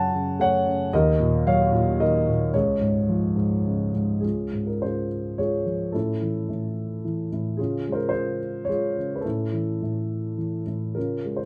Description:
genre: classical, lyrical solo piano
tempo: 102-114 BPM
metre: 3/4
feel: rubato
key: Db major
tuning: A4 = 441 Hz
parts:
  - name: dark baby grand piano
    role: solo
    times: 0.0-11.5 s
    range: Db2 to A5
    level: -25 LUFS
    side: equal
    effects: none
room: light reverb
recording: dark, warm production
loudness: -25 LUFS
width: mono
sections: 0.0-4.2 A section; 4.2-11.5 B section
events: none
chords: 0.0 Gbmadd9; 0.9 Ebm7; 2.5 Db; 5.9 A; 7.6 Db; 9.2 A

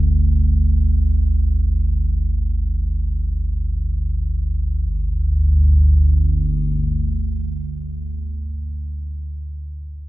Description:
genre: dark ambient drone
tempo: free time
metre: none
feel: none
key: unclear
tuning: A4 = 440 Hz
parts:
  - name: deep rumbling drone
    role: solo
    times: 0.0-8.0 s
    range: G1 to D2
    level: -17 LUFS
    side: equal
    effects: built-in reverb
room: wet cathedral reverb, RT60 7.3 s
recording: dark, warm production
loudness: -17 LUFS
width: side -18 dB against mid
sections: 0.0-4.9 A section; 4.9-10.1 B section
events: none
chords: 0.0 G5

